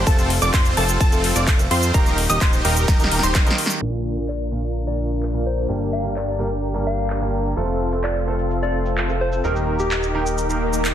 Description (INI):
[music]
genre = EDM, festival progressive house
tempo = 128 BPM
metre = 4/4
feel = straight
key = Bb major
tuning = A4 = 437 Hz
[part]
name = clear grand piano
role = accompaniment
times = 0.0-10.9 s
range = G2 to Bb4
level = -28 LUFS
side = right 3 dB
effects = sidechain pumping, ping-pong delay
[part]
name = wide unison pluck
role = arpeggios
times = 0.0-3.5 s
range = A5 to Eb6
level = -25 LUFS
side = equal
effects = sidechain pumping, ping-pong delay
[part]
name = supersaw chords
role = riff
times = 0.0-10.9 s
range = C4 to Eb5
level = -25 LUFS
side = equal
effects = sidechain pumping, low-pass filter, ping-pong delay
[part]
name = fat analog bass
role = bass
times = 0.0-10.9 s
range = Eb1 to F2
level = -24 LUFS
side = equal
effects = sidechain pumping
[part]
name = big-room dance drum kit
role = drums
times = 0.1-10.9 s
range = crash cymbal, handclaps, hi-hat, ride cymbal, shaker, snare drum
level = -25 LUFS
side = equal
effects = studio reverb
[part]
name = electronic kick drum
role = drums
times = 0.1-3.4 s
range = none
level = -18 LUFS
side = equal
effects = studio reverb
[part]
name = lush unison pad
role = sustained chords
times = 3.8-10.9 s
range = C3 to G4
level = -30 LUFS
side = left 1 dB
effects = chorus, sidechain pumping
[part]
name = soft struck synth lead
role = melody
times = 4.3-10.1 s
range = G4 to F5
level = -28 LUFS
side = left 2 dB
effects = chorus, ping-pong delay
[part]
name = swell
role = sound effects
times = 10.5-10.9 s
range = none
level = -26 LUFS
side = left 1 dB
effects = none
[sound]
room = light reverb, digital ambience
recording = dense, heavily limited modern master, low-pass filter, faint mains hum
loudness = -18 LUFS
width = side -10 dB against mid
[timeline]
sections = 0.0-3.8 A section; 3.8-10.9 B section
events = drop 0.0-3.8; drum fill 2.9-3.8; band accent 3.7; filter sweep on analog synth pad 3.8-10.9; filter sweep 3.8-10.9; swell 10.5-10.9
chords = 0.1 F; 1.9 Eb; 3.8 Bb; 5.7 Gm; 7.6 F; 9.4 Eb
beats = | 0.07 0.54 1.01 1.48 | 1.94 2.41 2.88 3.35 | 3.82 4.29 4.76 5.23 | 5.69 6.16 6.63 7.10 | 7.57 8.04 8.51 8.98 | 9.44 9.91 10.38 10.85